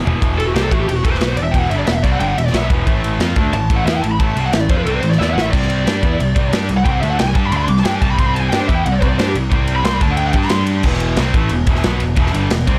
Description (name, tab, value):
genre	heavy metal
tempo	180 BPM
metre	4/4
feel	straight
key	E minor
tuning	A4 = 435 Hz
part	tight distorted guitar	riff	0.0-12.8 s	E2 to G4	-22 LUFS	equal	distortion
part	growling picked electric bass	bass	0.1-12.8 s	E1 to G2	-22 LUFS	equal	overdrive
part	modern studio drum kit	drums	0.1-12.8 s	crash cymbal, kick drum, ride cymbal, snare drum, toms	-21 LUFS	equal	none
part	lead guitar through a small cranked amp	melody	0.4-10.6 s	F#4 to D6	-24 LUFS	equal	overdrive
room	little or no reverb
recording	dark, warm production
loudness	-16 LUFS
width	mono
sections	0.2-10.8 A section; 10.8-12.8 B section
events	drum fill 0.0, 5.2-5.5; lead electric guitar solo 0.2-10.8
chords	0.2 Em; 2.9 A5; 5.5 C5; 10.0 D5; 10.3 G5; 10.8 Em